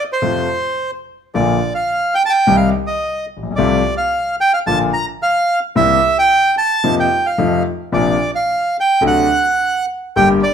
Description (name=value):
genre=tango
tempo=109 BPM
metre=4/4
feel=rubato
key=Bb major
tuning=A4 = 440 Hz
part: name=bandoneon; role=melody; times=0.0-10.5 s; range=C5 to Bb5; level=-15 LUFS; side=right 2 dB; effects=none
part: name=warm concert grand piano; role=accompaniment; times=0.2-10.4 s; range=G1 to G4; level=-16 LUFS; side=left 3 dB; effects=none
room=moderate large studio reverb, RT60 1.1 s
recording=minimal, uncompressed stereo recording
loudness=-14 LUFS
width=side -8 dB against mid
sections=0.0-10.2 A section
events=none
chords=0.2 F; 1.3 Bb; 2.5 Cm; 3.6 F/C; 4.7 Bb; 5.7 C7; 6.8 F7sus4; 7.4 F7; 7.9 Bbadd9; 9.0 D7